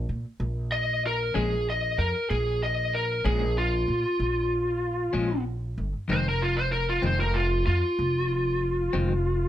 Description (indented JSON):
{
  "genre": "slow blues",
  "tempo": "63 BPM (dotted quarters)",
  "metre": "12/8",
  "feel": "straight",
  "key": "unclear",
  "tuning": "A4 = 441 Hz",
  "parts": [
    { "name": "upright bass", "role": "bass", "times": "0.0-9.5 s", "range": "F1 to Bb2", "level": "-28 LUFS", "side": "equal", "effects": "none" },
    { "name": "lead guitar through a small cranked amp", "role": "melody", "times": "0.7-9.5 s", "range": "F4 to Eb5", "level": "-26 LUFS", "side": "left 1 dB", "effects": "overdrive, plate reverb" },
    { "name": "clean electric guitar", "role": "accompaniment", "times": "1.3-9.1 s", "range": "F2 to Db4", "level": "-29 LUFS", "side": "left 4 dB", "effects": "tremolo" }
  ],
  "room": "light reverb",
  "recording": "dark, warm production",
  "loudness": "-24 LUFS",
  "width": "side -12 dB against mid",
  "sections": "0.0-9.5 A section",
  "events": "lead electric guitar solo 0.0-9.5",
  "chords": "0.0 Bb5; 6.1 Fm7"
}